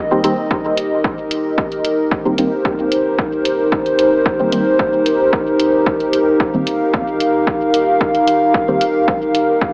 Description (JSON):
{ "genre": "dub techno", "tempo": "112 BPM", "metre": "4/4", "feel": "straight", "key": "C minor", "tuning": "A4 = 440 Hz", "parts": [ { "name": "dark analog pad", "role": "sustained chords", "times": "0.0-9.7 s", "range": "Eb4 to F5", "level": "-14 LUFS", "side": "equal", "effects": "chorus, sidechain pumping" }, { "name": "deep mellow chord stab", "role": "stabs", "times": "0.1-8.8 s", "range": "Eb3 to C4", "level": "-20 LUFS", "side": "equal", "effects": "chorus, phaser, vintage 12-bit sampler grit, sidechain pumping, dub echo" }, { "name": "electronic hi-hat", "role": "drums", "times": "0.2-9.5 s", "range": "none", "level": "-24 LUFS", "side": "equal", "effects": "none" }, { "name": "electronic kick drum", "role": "drums", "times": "0.5-9.7 s", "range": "none", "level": "-19 LUFS", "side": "equal", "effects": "none" } ], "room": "wet plate reverb, RT60 1.8 s", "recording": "dreamy mix soaked in reverb, AM radio sound", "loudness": "-13 LUFS", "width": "side -30 dB against mid", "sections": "0.0-9.7 A section", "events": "filter sweep on synth stab 0.0-9.7", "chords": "0.0 Cm7" }